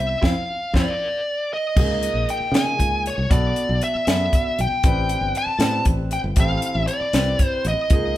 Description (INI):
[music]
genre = electric jazz fusion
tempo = 78 BPM (dotted quarters)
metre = 6/8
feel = straight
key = unclear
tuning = A4 = 440 Hz
[part]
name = smooth overdriven lead guitar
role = melody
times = 0.0-8.2 s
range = Db5 to A5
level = -23 LUFS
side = equal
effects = none
[part]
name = warm grand piano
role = accompaniment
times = 0.0-8.2 s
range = E3 to B4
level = -29 LUFS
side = equal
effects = none
[part]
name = fingered electric bass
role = bass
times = 0.0-8.2 s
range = G1 to Db3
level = -24 LUFS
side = equal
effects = none
[part]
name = tight funk drum kit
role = drums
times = 0.2-8.0 s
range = crash cymbal, hi-hat, kick drum, snare drum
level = -20 LUFS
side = equal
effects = none
[sound]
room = moderate large studio reverb, RT60 0.9 s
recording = band playing live in one room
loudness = -18 LUFS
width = side -14 dB against mid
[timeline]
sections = 0.0-1.8 A section; 1.8-8.2 B section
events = band accent 0.2-1.8; drum fill 1.0-1.8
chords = 0.2 F5; 1.8 Db69; 3.3 Bm7; 4.8 Am11; 6.4 Fmaj9/A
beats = | 0.23 1.00 | 1.77 2.54 | 3.31 4.08 | 4.84 5.61 | 6.38 7.14 | 7.91